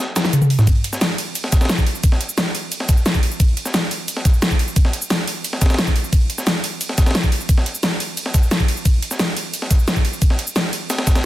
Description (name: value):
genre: drum and bass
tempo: 176 BPM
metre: 4/4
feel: straight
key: none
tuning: none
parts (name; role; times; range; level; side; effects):
- breakbeat sampler-style drum kit; drums; 0.2-11.2 s; hi-hat, snare drum; -26 LUFS; equal; high-pass filter on snare, high-pass filter on hats
- dubstep drum kit; drums; 0.2-11.2 s; hi-hat, ride cymbal, shaker, snare drum, toms; -20 LUFS; equal; overdrive
- electronic kick drum; drums; 0.7-11.1 s; none; -15 LUFS; equal; none
room: little or no reverb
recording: dense, heavily limited modern master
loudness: -16 LUFS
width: side -15 dB against mid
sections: 0.0-11.3 A section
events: break 0.0-0.7; drum fill 0.2-0.7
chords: none